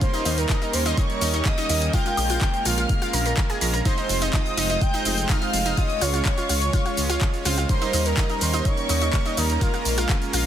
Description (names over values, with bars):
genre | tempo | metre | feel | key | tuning
progressive house | 125 BPM | 4/4 | straight | unclear | A4 = 444 Hz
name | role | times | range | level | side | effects
warm velvety synth lead | melody | 0.0-10.1 s | Bb4 to G5 | -30 LUFS | equal | chorus, cassette tape, sidechain pumping, digital delay
dark studio violin section | second line | 0.0-10.1 s | Bb5 to G6 | -31 LUFS | equal | sidechain pumping, digital delay
soft supersaw | stabs | 0.0-10.5 s | G3 to Db5 | -28 LUFS | right 3 dB | sidechain pumping, digital delay
electronic kick drum | drums | 0.0-10.2 s | none | -23 LUFS | equal | overdrive
house drum kit | drums | 0.0-10.4 s | handclaps, hi-hat, shaker, woodblock | -28 LUFS | left 1 dB | overdrive, sidechain pumping on hats, sidechain pumping on cymbals, sidechain pumping on perc
analog pluck | arpeggios | 0.1-10.4 s | Eb4 to Bb6 | -29 LUFS | equal | chorus, sidechain pumping, digital delay
dark detuned saw bass | bass | 0.3-10.5 s | F1 to Eb2 | -25 LUFS | equal | sidechain pumping
room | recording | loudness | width
light reverb | dense, heavily limited modern master | -20 LUFS | side -10 dB against mid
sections
0.0-10.5 A section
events
none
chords
0.0 Eb7; 1.9 Bbm7; 3.9 Fm7; 5.8 Dbmaj7; 7.7 Eb7; 9.6 Bbm7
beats
| 0.01 0.49 0.97 1.45 | 1.93 2.41 2.89 3.37 | 3.85 4.33 4.81 5.29 | 5.77 6.25 6.73 7.21 | 7.69 8.17 8.65 9.13 | 9.61 10.09